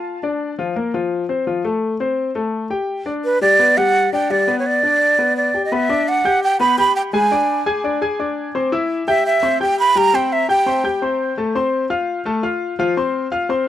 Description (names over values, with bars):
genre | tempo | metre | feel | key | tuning
jazz | 170 BPM | 4/4 | straight | G major, E minor from 5.7 s | A4 = 441 Hz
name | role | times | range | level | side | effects
clear baby grand piano | accompaniment | 0.0-13.6 s | F3 to G#6 | -19 LUFS | left 3 dB | none
breathy jazz flute | melody | 3.2-11.0 s | B4 to B5 | -16 LUFS | right 2 dB | tape echo
room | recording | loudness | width
little or no reverb | dry, close 1970s-style studio recording | -16 LUFS | side -12 dB against mid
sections
0.0-5.7 A section; 5.7-13.7 B section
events
none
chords
0.1 Bb; 1.5 Fadd9; 2.9 G; 5.7 Em9; 7.1 N.C.; 8.5 C; 10.0 C5; 11.4 F; 12.8 F5